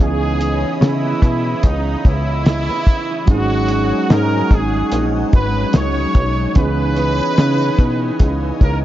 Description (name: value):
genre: indie pop, bedroom pop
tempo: 73 BPM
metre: 4/4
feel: swing 55% on 16ths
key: C# minor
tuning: A4 = 442 Hz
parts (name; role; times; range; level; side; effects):
- bright trumpet; melody; 0.0-8.8 s; D#4 to C#5; -22 LUFS; right 1 dB; ensemble chorus, analog delay
- electric guitar through a small old amp; accompaniment; 0.0-8.8 s; G#2 to D#4; -24 LUFS; left 1 dB; wide subtle chorus, vibrato effect
- soft electric-piano-like synth keys; accompaniment; 0.0-8.8 s; E3 to D#5; -23 LUFS; right 5 dB; chorus, cassette tape
- phased analog pad; sustained chords; 0.0-8.8 s; C#5 to D#6; -30 LUFS; left 3 dB; phaser, chorus
- plucky analog bass; bass; 0.0-8.8 s; G#1 to C#3; -19 LUFS; equal; none
- cloth-damped thuddy drum kit; drums; 0.0-8.8 s; hi-hat, kick drum, snare drum; -14 LUFS; equal; none
room: studio reverb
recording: dark, warm production, nothing above 7.5 kHz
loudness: -14 LUFS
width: side -13 dB against mid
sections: 0.0-8.8 A section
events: none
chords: 0.0 C#m9; 3.3 G#7sus4; 6.6 C#m9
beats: 0.81 1.63 2.45 | 3.27 4.09 4.92 5.74 | 6.55 7.38 8.20